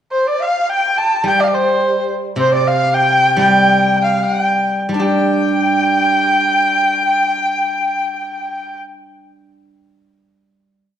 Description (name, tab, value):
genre	chinese traditional, Chinese chamber ensemble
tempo	72-107 BPM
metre	2/4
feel	rubato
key	G shang mode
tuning	A4 = 441 Hz
part	rich erhu	melody	0.1-8.8 s	C5 to A5	-16 LUFS	right 1 dB	none
part	mellow dizi	second line	0.1-8.8 s	C5 to A5	-18 LUFS	left 2 dB	none
part	steel-string zither	accompaniment	1.2-11.0 s	C3 to G4	-19 LUFS	right 1 dB	none
room	wet recital hall reverb, RT60 1.4 s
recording	dark, warm production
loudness	-13 LUFS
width	side -9 dB against mid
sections	0.1-5.0 A section; 5.0-8.3 final chord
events	slowing down 2.4-5.0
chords	none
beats	| 0.12 0.70 | 1.26 1.83 | 2.39 2.95 | 3.55 4.23 | 5.02 5.83 | 6.63 7.44